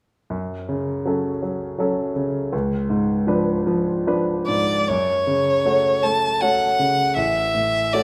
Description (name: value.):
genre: classical, romantic duo for violin and grand piano.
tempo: 79 BPM.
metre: 3/4.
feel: uneven beats, rubato.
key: F# minor.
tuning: A4 = 440 Hz.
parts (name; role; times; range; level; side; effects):
clear concert grand piano; accompaniment; 0.3-8.0 s; A1 to C#5; -24 LUFS; equal; none.
clear violin; melody; 4.5-8.0 s; C#5 to A5; -21 LUFS; equal; none.
room: moderate recital hall reverb, RT60 1.6 s.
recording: none.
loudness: -21 LUFS.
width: mono.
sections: 0.3-4.9 A section; 4.9-8.0 B section.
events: none.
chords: 0.3 F#m; 2.5 C#7b9; 4.9 F#m; 7.2 N.C..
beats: | 0.31 1.08 1.80 | 2.53 3.28 4.06 | 4.87 5.64 6.41 | 7.17 7.92.